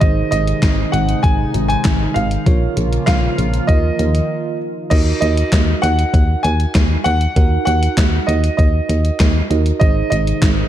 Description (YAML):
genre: synth-pop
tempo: 98 BPM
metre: 4/4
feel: straight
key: Eb dorian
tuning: A4 = 440 Hz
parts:
  - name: clear concert grand piano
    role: melody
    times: 0.0-10.7 s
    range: Eb5 to Ab5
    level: -21 LUFS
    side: right 1 dB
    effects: tape echo
  - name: tine electric piano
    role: accompaniment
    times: 0.0-10.7 s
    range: Eb4 to Gb5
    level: -24 LUFS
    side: right 7 dB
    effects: auto-pan
  - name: chorused pulse-width pad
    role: sustained chords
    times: 0.0-4.9, 9.8-10.7 s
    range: C3 to F4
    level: -23 LUFS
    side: equal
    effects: none
  - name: solid FM bass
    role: bass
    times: 0.0-10.6 s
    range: Ab1 to Eb2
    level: -17 LUFS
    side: equal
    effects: none
  - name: gated 80s digital drum machine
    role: drums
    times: 0.0-10.6 s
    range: crash cymbal, handclaps, hi-hat, kick drum, snare drum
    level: -16 LUFS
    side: equal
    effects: gated reverb, gated reverb snare
room: little or no reverb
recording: dark, warm production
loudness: -13 LUFS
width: side -11 dB against mid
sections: 0.0-4.9 A section; 4.9-10.7 A section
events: break 4.3-4.9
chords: 0.0 Ab; 2.5 Bbm; 3.7 Ebsus2; 4.9 Ebm; 9.8 Ab